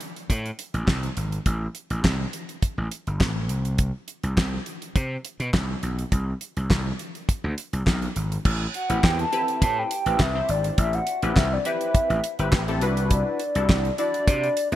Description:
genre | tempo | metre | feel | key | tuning
early-eighties boogie funk | 103 BPM | 4/4 | straight | A dorian | A4 = 440 Hz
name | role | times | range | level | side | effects
damped 70s drum kit | drums | 0.0-14.8 s | crash cymbal, handclaps, hi-hat, kick drum, snare drum | -24 LUFS | equal | none
gritty slap bass | bass | 0.3-14.8 s | G1 to C3 | -26 LUFS | equal | overdrive
hollow clarinet-like synth lead | melody | 8.8-14.8 s | D5 to A5 | -25 LUFS | equal | chorus
funky polysynth comp | accompaniment | 8.9-14.8 s | C4 to D5 | -29 LUFS | left 3 dB | chorus
room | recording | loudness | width
light reverb | bright 1980s-style digital production | -22 LUFS | side -13 dB against mid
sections
0.0-8.5 A section; 8.5-14.8 B section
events
none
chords
0.0 Am; 3.5 N.C.; 8.5 Am7; 12.8 Cmaj9#11

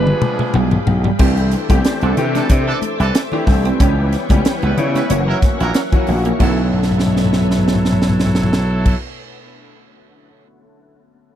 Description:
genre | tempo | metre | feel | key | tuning
polished 1980s jazz-funk pop | 92 BPM | 4/4 | swing 54% on 16ths | B minor | A4 = 441 Hz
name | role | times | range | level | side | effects
raspy alto saxophone | melody | 0.0-0.6 s | B4 | -23 LUFS | right 1 dB | tape echo
clear horn section | second line | 0.0-8.9 s | E3 to B4 | -25 LUFS | right 5 dB | none
clear grand piano | accompaniment | 0.0-11.4 s | D3 to G4 | -22 LUFS | left 3 dB | ensemble chorus
soft string machine | sustained chords | 0.0-8.9 s | B2 to D6 | -28 LUFS | equal | ensemble chorus
electric guitar at the edge of break-up | riff | 0.0-8.0 s | G3 to E4 | -24 LUFS | right 7 dB | lush chorus
gritty slap bass | bass | 0.0-8.9 s | F#1 to C#3 | -16 LUFS | equal | overdrive
crisp fusion drum kit | drums | 0.1-10.5 s | crash cymbal, hi-hat, kick drum, snare drum, toms | -17 LUFS | equal | none
congas | percussion | 0.2-8.9 s | none | -28 LUFS | left 6 dB | none
room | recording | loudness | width
little or no reverb | dry, close 1970s-style studio recording | -13 LUFS | side -11 dB against mid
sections
0.0-1.2 A section; 1.2-6.4 B section; 6.4-9.0 C section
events
drum fill 0.0-1.2, 6.7-8.8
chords
0.0 G7b9; 1.2 C69; 3.8 C#m7b5; 5.1 F#7; 6.4 Bm11

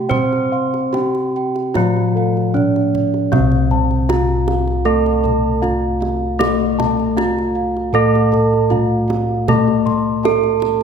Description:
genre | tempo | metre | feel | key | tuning
Javanese gamelan | 78 BPM | 4/4 | straight | unclear | A4 = 442 Hz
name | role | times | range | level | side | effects
gamelan-type bronze metallophone | melody | 0.0-10.8 s | A3+20c to C5 | -19 LUFS | right 3 dB | none
gamelan-type bronze metallophone | accompaniment | 0.0-10.8 s | C3 to C4 | -21 LUFS | left 3 dB | none
gamelan-type bronze metallophone | arpeggios | 0.0-10.8 s | A4+20c to C6 | -26 LUFS | right 5 dB | none
gamelan-type bossed gongs | bass | 0.0-10.8 s | C2 to C5 | -21 LUFS | left 1 dB | none
gamelan-type bossed gongs | arpeggios | 0.1-10.7 s | A4+20c to C6 | -26 LUFS | left 7 dB | none
kendang | percussion | 0.1-10.8 s | none | -24 LUFS | right 4 dB | none
room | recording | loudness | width
moderate concert hall reverb, RT60 2.1 s | none | -14 LUFS | side -7 dB against mid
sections
0.0-3.3 A section; 3.3-10.8 B section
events
none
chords
none

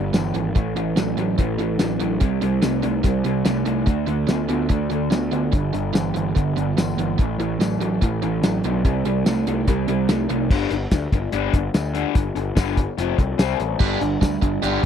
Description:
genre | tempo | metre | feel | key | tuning
classic rock | 145 BPM | 4/4 | straight | unclear | A4 = 440 Hz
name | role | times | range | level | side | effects
overdriven electric guitar | riff | 0.0-10.5, 13.8-14.9 s | G2 to G4 | -24 LUFS | right 12 dB | none
raw garage guitar | riff | 0.0-14.9 s | F2 to C4 | -26 LUFS | left 15 dB | overdrive, phaser
fuzz picked electric bass | bass | 0.0-14.9 s | F1 to D2 | -25 LUFS | equal | overdrive
cloth-damped thuddy drum kit | drums | 0.1-14.9 s | crash cymbal, hi-hat, kick drum, snare drum, tambourine | -19 LUFS | equal | none
room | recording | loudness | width
small room ambience | dry, close 1970s-style studio recording | -19 LUFS | side -8 dB against mid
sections
0.0-10.5 A section; 10.5-14.9 B section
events
none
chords
0.0 G5; 0.6 A5; 2.2 C5; 3.9 D5; 5.5 G5; 7.2 A5; 8.8 C5; 10.5 G5; 13.0 F5; 13.4 C5; 13.8 G5

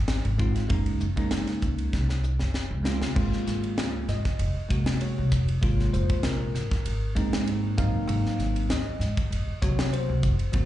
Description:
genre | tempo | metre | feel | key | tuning
electric jazz fusion | 98 BPM | 4/4 | swing 54% on 16ths | unclear | A4 = 439 Hz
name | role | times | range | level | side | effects
upright bass | bass | 0.0-10.7 s | F1 to Ab2 | -27 LUFS | equal | none
crisp fusion drum kit | drums | 0.1-10.7 s | crash cymbal, hi-hat, kick drum, ride cymbal, snare drum | -29 LUFS | equal | none
bell-like tine electric piano | accompaniment | 0.4-10.7 s | C3 to F5 | -29 LUFS | equal | wide subtle chorus, slapback echo
room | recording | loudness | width
little or no reverb | live gig heard through the venue's PA, club reverb, nothing above 10.3 kHz | -24 LUFS | side -13 dB against mid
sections
0.0-3.2 A section; 3.2-10.7 B section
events
drum fill 1.9-3.2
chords
0.0 Ab6; 0.7 Gb6; 3.2 Gbmaj9#11; 7.8 Ab9

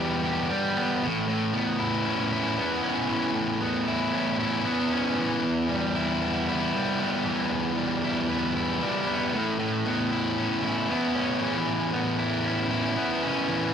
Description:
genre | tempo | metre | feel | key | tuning
rock | 116 BPM | 4/4 | straight | unclear | A4 = 440 Hz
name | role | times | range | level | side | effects
fuzz guitar | solo | 0.0-13.7 s | E2 to G4 | -24 LUFS | equal | distortion
room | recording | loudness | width
moderate studio reverb, RT60 0.6 s | none | -24 LUFS | side -8 dB against mid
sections
0.0-13.7 A section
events
none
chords
0.0 Em; 1.0 Aadd9; 5.4 Em; 9.3 Aadd9

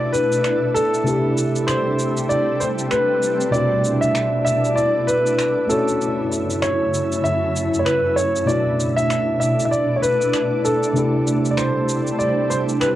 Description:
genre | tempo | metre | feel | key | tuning
sunset chillout | 97 BPM | 4/4 | swing 58% on 16ths | B minor | A4 = 439 Hz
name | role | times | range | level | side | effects
warm concert grand piano | melody | 0.0-12.9 s | A4 to E5 | -20 LUFS | equal | tape echo
tine electric piano | accompaniment | 0.0-13.0 s | B2 to D5 | -23 LUFS | equal | auto-pan, low-pass filter, cassette tape
shimmering ambient pad | sustained chords | 0.0-13.0 s | F#2 to D5 | -23 LUFS | right 1 dB | chorus, built-in reverb, cassette tape
electronic cabasa and finger snaps | drums | 0.1-13.0 s | none | -29 LUFS | equal | cassette tape
room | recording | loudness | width
wet booth ambience, RT60 0.2 s | home recording on cassette | -17 LUFS | side -13 dB against mid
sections
0.0-13.0 A section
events
filter sweep on tine electric piano 0.0-13.0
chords
0.0 Bm7; 1.1 Cmaj13; 3.5 Bm7; 5.7 F#m7; 8.5 Bm7; 11.0 C69

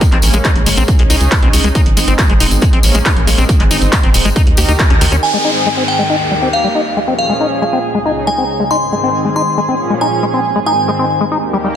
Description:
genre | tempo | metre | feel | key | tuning
uplifting trance | 138 BPM | 4/4 | straight | Ab major | A4 = 437 Hz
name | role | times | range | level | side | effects
lush unison pad | sustained chords | 0.0-11.8 s | Db2 to Bb4 | -19 LUFS | right 1 dB | chorus, sidechain pumping
liquid acid bass | arpeggios | 0.0-11.7 s | Eb3 to G4 | -18 LUFS | left 3 dB | chorus, sidechain pumping, tape echo
electronic kick drum | drums | 0.0-4.9 s | none | -12 LUFS | equal | none
punchy analog drum machine | drums | 0.0-5.2 s | handclaps, hi-hat | -18 LUFS | right 1 dB | low-pass filter on hats, low-pass filter on snare, low-pass filter on room
tambourine | percussion | 0.0-5.2 s | none | -22 LUFS | left 4 dB | none
tight sequencer bass | bass | 0.1-5.2 s | Eb1 to Eb2 | -15 LUFS | equal | sidechain pumping
glassy synth bell | second line | 5.2-11.2 s | F5 to C6 | -16 LUFS | equal | chorus, phaser, ping-pong delay
downlifter | sound effects | 5.2-8.7 s | none | -20 LUFS | right 1 dB | none
room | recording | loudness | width
light reverb, digital ambience | dense, heavily limited modern master | -10 LUFS | side -9 dB against mid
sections
0.0-5.2 A section; 5.2-11.8 B section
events
band accent 4.8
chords
0.0 Bbm7; 0.9 Dbsus2; 1.8 Ab; 2.6 Bbm7; 3.5 Ab; 4.4 Eb; 5.2 Ab; 6.1 Eb; 7.0 Bbm7; 7.8 Dbsus2; 8.7 Ab; 9.6 Bbm7; 10.4 Ab

